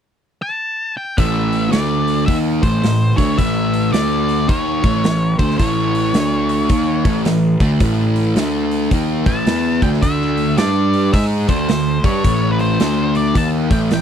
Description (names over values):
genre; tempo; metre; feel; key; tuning
blues rock power trio and southern rock; 108 BPM; 4/4; swing 63% on 8ths; A mixolydian; A4 = 440 Hz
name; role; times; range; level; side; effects
octave-fuzz lead guitar; melody; 0.4-14.0 s; B4 to A5; -22 LUFS; left 2 dB; distortion, slapback echo
fuzz guitar; riff; 1.2-14.0 s; A2 to G#4; -17 LUFS; equal; distortion
fuzz picked electric bass; bass; 1.2-14.0 s; A1 to G#2; -21 LUFS; equal; overdrive
big rock drum kit; drums; 1.2-14.0 s; hi-hat, kick drum, snare drum; -19 LUFS; equal; none
room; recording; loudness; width
little or no reverb; dry, close 1970s-style studio recording; -14 LUFS; side -8 dB against mid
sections
0.0-1.2 A section; 1.2-14.0 B section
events
none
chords
0.0 N.C.; 1.2 A5; 1.7 D5; 2.3 Am; 3.9 D5; 4.5 A; 6.1 D5; 6.7 A; 8.4 D5; 8.9 A5; 10.0 D5; 10.6 G5; 11.1 D5; 12.2 Am; 12.8 D5; 13.4 A5